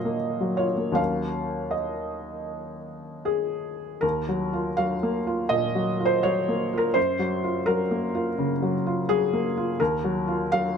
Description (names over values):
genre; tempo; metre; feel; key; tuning
neoclassical minimalist piano; 77-86 BPM; 4/4; rubato; Eb dorian; A4 = 440 Hz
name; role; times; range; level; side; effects
felt-muted upright piano; solo; 0.0-10.8 s; Eb2 to F5; -23 LUFS; equal; none
room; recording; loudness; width
moderate stone room reverb, RT60 1.0 s; none; -23 LUFS; side -6 dB against mid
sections
0.0-4.0 A section; 4.0-10.8 A section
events
none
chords
0.0 Ebmadd9; 1.0 Ebm7; 4.0 Ebmadd9; 7.0 Gbmaj7; 9.8 Ebmadd9